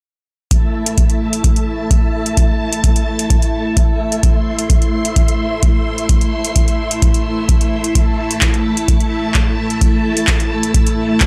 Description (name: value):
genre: acid house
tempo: 129 BPM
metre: 4/4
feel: straight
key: A minor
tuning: A4 = 440 Hz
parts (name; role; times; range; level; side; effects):
- string machine, full ensemble; sustained chords; 0.5-11.3 s; A3 to C6; -21 LUFS; equal; ensemble chorus, sidechain pumping
- booming analog drum machine; drums; 0.5-11.3 s; handclaps, hi-hat; -22 LUFS; equal; none
- electronic kick drum; drums; 0.5-11.3 s; none; -16 LUFS; equal; none
room: light reverb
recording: none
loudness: -15 LUFS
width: mono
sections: 0.5-11.3 A section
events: none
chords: 0.5 A5